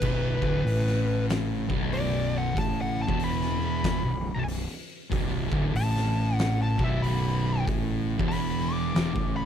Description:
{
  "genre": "stoner and doom metal",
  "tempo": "94 BPM",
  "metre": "4/4",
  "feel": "swing 63% on 8ths",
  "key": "B minor",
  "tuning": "A4 = 440 Hz",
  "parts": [
    { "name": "fuzz lead guitar", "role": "melody", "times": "0.0-9.5 s", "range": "B4 to D6", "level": "-32 LUFS", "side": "left 1 dB", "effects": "distortion, slapback echo" },
    { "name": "thick fuzz guitar", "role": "riff", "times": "0.0-9.5 s", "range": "B1 to A2", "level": "-30 LUFS", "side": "left 7 dB", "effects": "distortion" },
    { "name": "thick fuzz guitar", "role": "riff", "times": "0.0-9.5 s", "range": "B1 to A2", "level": "-30 LUFS", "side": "right 8 dB", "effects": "distortion" },
    { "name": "fuzz fingered electric bass", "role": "bass", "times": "0.0-9.5 s", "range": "B0 to A1", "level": "-31 LUFS", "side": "equal", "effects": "overdrive" },
    { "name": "oversized low-tuned drum kit", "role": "drums", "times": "0.0-9.3 s", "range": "crash cymbal, hi-hat, kick drum, snare drum", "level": "-32 LUFS", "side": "equal", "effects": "none" }
  ],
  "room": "little or no reverb",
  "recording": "none",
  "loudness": "-24 LUFS",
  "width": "side -9 dB against mid",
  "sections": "0.0-9.5 A section",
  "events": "lead electric guitar solo 0.0-9.5",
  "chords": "0.0 Bm"
}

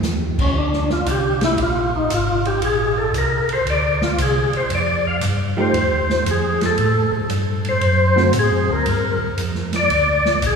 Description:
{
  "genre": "soul jazz organ trio",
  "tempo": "115 BPM",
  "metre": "4/4",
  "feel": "swing 67% on 8ths",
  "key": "unclear",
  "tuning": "A4 = 440 Hz",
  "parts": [
    { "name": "mellow tonewheel organ", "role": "bass", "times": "0.0-10.6 s", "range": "Ab1 to A2", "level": "-21 LUFS", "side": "equal", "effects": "chorus vibrato, slow rotary speaker" },
    { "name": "open jazz drum kit", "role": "drums", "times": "0.0-10.6 s", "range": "crash cymbal, hi-hat, kick drum, ride cymbal, snare drum", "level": "-26 LUFS", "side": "right 2 dB", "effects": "none" },
    { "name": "percussive tonewheel organ", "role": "melody", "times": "0.4-10.6 s", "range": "Db4 to F5", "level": "-19 LUFS", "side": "left 1 dB", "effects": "slow rotary speaker, overdrive, chorus vibrato" },
    { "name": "vintage hollow-body jazz guitar", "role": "accompaniment", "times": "5.6-8.3 s", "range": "D3 to G4", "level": "-26 LUFS", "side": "right 3 dB", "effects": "none" }
  ],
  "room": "wet church reverb, RT60 3.5 s",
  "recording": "recorded in a church or concert hall, studio reverb",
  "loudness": "-16 LUFS",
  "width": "side -5 dB against mid",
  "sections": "0.0-10.6 A section",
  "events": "tonewheel organ solo 0.0-10.6",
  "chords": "0.0 Dbsus2/Eb; 0.6 Bb9; 4.7 F7sus2; 6.8 D7; 8.9 Gm7"
}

